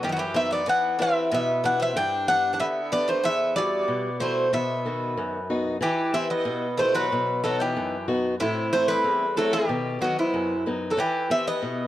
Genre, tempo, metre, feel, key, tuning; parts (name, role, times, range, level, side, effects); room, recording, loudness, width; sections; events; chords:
greek folk, Greek bouzouki band; 93 BPM; 2/4; straight; E minor, E harmonic minor from 5.8 s; A4 = 440 Hz
Greek bouzouki; melody; 0.0-11.9 s; E4 to G5; -24 LUFS; equal
Greek bouzouki; second line; 0.0-11.9 s; C3 to D4; -32 LUFS; equal
picked swing-style acoustic guitar; accompaniment; 0.0-11.9 s; E2 to F#5; -28 LUFS; left 1 dB
moderate plate reverb, RT60 2.3 s; worn, warbling old tape, cassette tape, warbly pitch drift; -22 LUFS; side -13 dB against mid
0.0-5.8 A section; 5.8-11.9 B section
0.0 B; 0.7 Em; 2.0 G; 3.2 Emadd9; 4.5 B; 5.8 Em; 7.1 B; 8.4 Am; 9.7 B; 11.0 Em